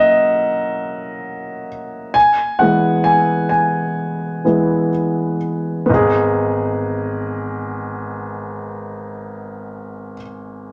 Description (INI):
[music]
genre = pop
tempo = 62-69 BPM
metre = 4/4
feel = straight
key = G# minor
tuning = A4 = 440 Hz
[part]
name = clear grand piano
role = accompaniment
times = 0.0-10.7 s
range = G#1 to A#5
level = -19 LUFS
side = equal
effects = none
[sound]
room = wet studio reverb, RT60 0.9 s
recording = none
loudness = -18 LUFS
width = mono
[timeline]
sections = 0.0-5.9 A section; 5.9-9.7 B section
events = slowing down 0.0-5.9; grand piano solo 0.0-5.9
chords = 0.0 F#; 2.1 E; 5.9 G#m